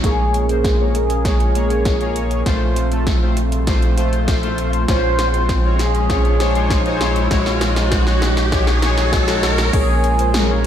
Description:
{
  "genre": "synthwave",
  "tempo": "99 BPM",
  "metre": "4/4",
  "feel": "straight",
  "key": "Bb minor",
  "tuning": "A4 = 440 Hz",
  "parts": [
    { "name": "expressive synth lead", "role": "melody", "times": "0.0-10.7 s", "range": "Ab4 to C5", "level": "-23 LUFS", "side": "right 1 dB", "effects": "wide subtle chorus, ping-pong delay, shimmer reverb" },
    { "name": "chorused pulse-width pad", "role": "sustained chords", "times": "0.0-10.7 s", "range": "Ab3 to C6", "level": "-25 LUFS", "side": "equal", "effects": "vintage 12-bit sampler grit, sidechain pumping, shimmer reverb" },
    { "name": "analog synth brass", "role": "stabs", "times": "0.0-10.7 s", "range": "Ab3 to Db5", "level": "-23 LUFS", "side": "left 2 dB", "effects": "chorus, ping-pong delay, shimmer reverb" },
    { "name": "round analog bass", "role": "bass", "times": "0.0-10.7 s", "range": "Bb1", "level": "-20 LUFS", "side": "equal", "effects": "sidechain pumping" },
    { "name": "80s electronic pad drums", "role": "drums", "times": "0.0-10.7 s", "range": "crash cymbal, hi-hat, snare drum", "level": "-24 LUFS", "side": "equal", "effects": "overdrive, high-pass filter on hats, high-pass filter on snare, high-pass filter on cymbals, gated reverb" },
    { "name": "electronic kick drum", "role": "drums", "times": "0.0-9.9 s", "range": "none", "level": "-20 LUFS", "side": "equal", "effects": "overdrive" },
    { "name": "riser", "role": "sound effects", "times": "3.3-9.7 s", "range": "none", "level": "-26 LUFS", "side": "right 1 dB", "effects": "none" }
  ],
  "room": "light reverb",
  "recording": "none",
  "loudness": "-14 LUFS",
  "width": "side -10 dB against mid",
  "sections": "0.0-9.7 A section",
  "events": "drum fill 0.0-9.7; riser 3.3-9.7",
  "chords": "0.0 Bbm7; 2.5 F/Bb; 4.9 Dbmaj7/Bb; 7.3 Ab7sus4/Bb; 9.7 Bbm7"
}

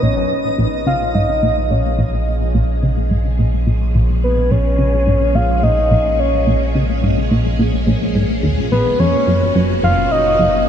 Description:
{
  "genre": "ambient, sequencer-driven space music",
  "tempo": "107 BPM",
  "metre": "4/4",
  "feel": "straight",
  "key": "Bb minor",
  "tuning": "A4 = 440 Hz",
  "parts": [
    { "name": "soft octave-layered synth lead", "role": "melody", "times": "0.0-10.7 s", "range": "Cb5 to F5", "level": "-18 LUFS", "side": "equal", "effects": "chorus, ping-pong delay" },
    { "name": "phased string machine", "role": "sustained chords", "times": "0.0-10.7 s", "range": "Bb2 to Ab4", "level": "-24 LUFS", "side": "equal", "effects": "ensemble chorus, phaser" },
    { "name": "plucky analog bass", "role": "riff", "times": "0.0-10.5 s", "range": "Gb1 to Db3", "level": "-18 LUFS", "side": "equal", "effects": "ensemble chorus, ping-pong delay" },
    { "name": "warm sub bass", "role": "bass", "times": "0.0-10.7 s", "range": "Gb1 to Bb1", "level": "-19 LUFS", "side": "equal", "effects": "none" }
  ],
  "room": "moderate huge ambient reverb, RT60 7.4 s",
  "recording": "none",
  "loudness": "-13 LUFS",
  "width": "side -9 dB against mid",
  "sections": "0.0-10.7 A section",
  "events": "fade-in on string machine 0.0-10.7; filter sweep on analog synth bass 0.0-10.7",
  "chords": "0.0 Bbm7; 9.0 Gb"
}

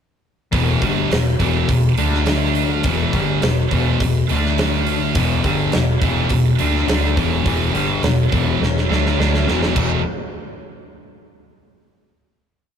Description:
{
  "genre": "hard rock",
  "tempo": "104 BPM",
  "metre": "4/4",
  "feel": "straight",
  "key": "E minor",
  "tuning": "A4 = 440 Hz",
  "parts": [
    { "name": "overdriven semi-hollow guitar", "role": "riff", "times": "0.5-10.0 s", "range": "E2 to D4", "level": "-19 LUFS", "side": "left 3 dB", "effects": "none" },
    { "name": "scooped high-gain guitar", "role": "riff", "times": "0.5-10.0 s", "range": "E2 to D4", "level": "-23 LUFS", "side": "right 8 dB", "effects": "distortion" },
    { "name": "vintage muted fingered electric bass", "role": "bass", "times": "0.5-10.0 s", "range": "E1 to D2", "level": "-22 LUFS", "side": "equal", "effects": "none" },
    { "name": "huge arena drum kit", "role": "drums", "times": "0.5-9.9 s", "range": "crash cymbal, hi-hat, kick drum, snare drum", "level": "-22 LUFS", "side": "equal", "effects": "none" }
  ],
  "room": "wet booth ambience, RT60 0.2 s",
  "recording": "rough rehearsal-room recording, tube saturation",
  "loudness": "-15 LUFS",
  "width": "side -8 dB against mid",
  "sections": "0.5-9.8 riff; 9.8-12.1 final chord",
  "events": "drum fill 8.6-9.8",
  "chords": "0.5 Em; 2.0 D5; 2.8 Em; 4.3 D5; 5.2 Em; 9.8 E5"
}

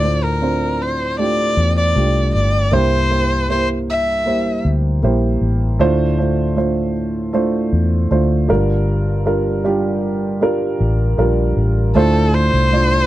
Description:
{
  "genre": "pop ballad",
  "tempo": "78 BPM",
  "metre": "4/4",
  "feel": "straight",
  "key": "D minor",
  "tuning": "A4 = 442 Hz",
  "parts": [
    { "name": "warm erhu", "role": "melody", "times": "0.0-4.6, 12.0-13.1 s", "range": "A4 to E5", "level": "-18 LUFS", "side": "left 1 dB", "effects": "slapback echo" },
    { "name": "dark baby grand piano", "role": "accompaniment", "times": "0.0-13.1 s", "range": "G2 to D5", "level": "-18 LUFS", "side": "right 2 dB", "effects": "none" },
    { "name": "vintage muted fingered electric bass", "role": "bass", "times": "0.0-13.1 s", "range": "G1 to E2", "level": "-18 LUFS", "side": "left 1 dB", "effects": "none" }
  ],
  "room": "little or no reverb",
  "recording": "dry, close 1970s-style studio recording",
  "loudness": "-14 LUFS",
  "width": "side -15 dB against mid",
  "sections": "0.0-12.0 A section; 12.0-13.1 B section",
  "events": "none",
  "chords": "0.0 Dm7; 2.7 C7; 5.8 Dm7; 8.5 Gm7; 12.0 Dm7"
}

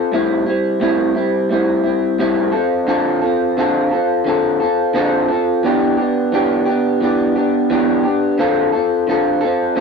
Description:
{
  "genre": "indie pop",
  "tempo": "87 BPM",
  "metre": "4/4",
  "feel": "swing 55% on 16ths",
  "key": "D dorian",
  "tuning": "A4 = 440 Hz",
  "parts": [
    { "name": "electric guitar through a small old amp", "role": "solo", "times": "0.0-9.8 s", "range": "A2 to A4", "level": "-14 LUFS", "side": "equal", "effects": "wide subtle chorus, warbly pitch drift" }
  ],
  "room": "little or no reverb",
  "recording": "dry, close 1970s-style studio recording",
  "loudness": "-14 LUFS",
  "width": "side -5 dB against mid",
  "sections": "0.0-8.4 A section; 8.4-9.8 B section",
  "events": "none",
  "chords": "0.1 Am7; 2.5 Dm7; 5.6 Em7; 8.4 Dm7"
}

